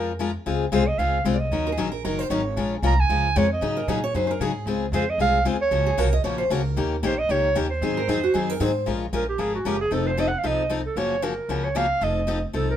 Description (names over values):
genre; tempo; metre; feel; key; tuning
acoustic string swing (jazz manouche); 229 BPM; 4/4; swing 56% on 8ths; Db major, Bb minor from 8.9 s; A4 = 440 Hz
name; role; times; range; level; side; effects
clear clarinet; melody; 0.0-12.8 s; Gb4 to Bb5; -24 LUFS; right 3 dB; none
picked steel-string acoustic guitar; accompaniment; 0.0-12.7 s; Db3 to Bb4; -26 LUFS; left 5 dB; none
upright bass; bass; 0.0-12.8 s; F1 to Bb2; -27 LUFS; equal; none
picked steel-string acoustic guitar; second line; 1.7-8.9 s; Gb4 to Eb5; -27 LUFS; right 2 dB; none
room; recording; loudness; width
light reverb; minimal, uncompressed stereo recording; -21 LUFS; side -10 dB against mid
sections
0.5-8.9 A section; 8.9-12.8 B section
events
clarinet solo 8.9-12.8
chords
0.5 Dbmaj7; 1.5 Ebm7; 2.6 Bbm7; 3.6 Ab9sus4; 4.7 Dbmaj7; 5.7 Gbmaj7; 6.8 Eb7; 7.8 Ab7; 8.9 Bbm7; 9.9 F7; 11.0 Gbmaj7; 12.0 F7